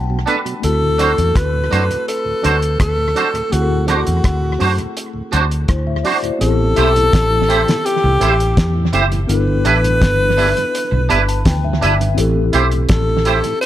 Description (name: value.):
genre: lovers rock reggae.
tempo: 83 BPM.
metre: 4/4.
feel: straight.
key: unclear.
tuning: A4 = 445 Hz.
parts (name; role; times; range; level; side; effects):
mellow tine electric piano; accompaniment; 0.0-13.7 s; A3 to B5; -24 LUFS; left 4 dB; medium stereo tremolo.
vintage muted fingered electric bass; bass; 0.0-13.4 s; F#1 to F#2; -17 LUFS; equal; none.
mellow tonewheel organ; accompaniment; 0.1-13.5 s; D2 to G4; -27 LUFS; right 5 dB; slow rotary speaker.
twangy electric guitar; stabs; 0.3-13.4 s; D4 to C5; -19 LUFS; right 5 dB; ensemble chorus.
cloth-damped thuddy drum kit; drums; 0.3-13.7 s; hi-hat, kick drum, rim click, snare drum; -19 LUFS; equal; tape echo.
warm alto saxophone; melody; 0.6-13.7 s; F#4 to C5; -18 LUFS; left 1 dB; tape echo.
room: light reverb, small room ambience.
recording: none.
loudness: -13 LUFS.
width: side -12 dB against mid.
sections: 0.0-6.4 A section; 6.4-13.7 B section.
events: tine electric piano fill 0.0-0.6, 10.7-12.2.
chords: 0.0 Bm7; 0.6 D7; 6.4 Am7; 9.3 G6; 12.2 Am7.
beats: | 0.63 1.35 2.07 2.79 | 3.52 4.24 4.96 5.68 | 6.41 7.13 7.85 8.57 | 9.29 10.01 10.74 11.46 | 12.18 12.90 13.62.